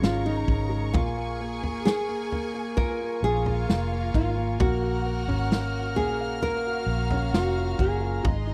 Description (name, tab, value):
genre	pop ballad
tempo	66 BPM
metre	4/4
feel	straight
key	unclear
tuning	A4 = 440 Hz
part	nylon-string guitar	melody	0.0-8.5 s	Eb4 to Bb4	-32 LUFS	equal	slapback echo
part	warm studio violin section	second line	0.0-8.5 s	Eb4 to Bb5	-39 LUFS	equal	none
part	warm concert grand piano	accompaniment	0.0-8.5 s	Db3 to F5	-35 LUFS	equal	none
part	warm studio string section	sustained chords	0.0-8.5 s	Ab4 to F6	-39 LUFS	equal	none
part	vintage muted fingered electric bass	bass	0.0-8.5 s	F1 to Bb1	-31 LUFS	equal	none
part	natural country drum kit	drums	0.0-8.5 s	kick drum, snare drum, toms	-28 LUFS	equal	none
room	little or no reverb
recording	dry, close 1970s-style studio recording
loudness	-26 LUFS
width	mono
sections	0.0-8.5 A section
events	none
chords	0.0 Db; 0.9 Bbm7; 4.6 Gbmaj7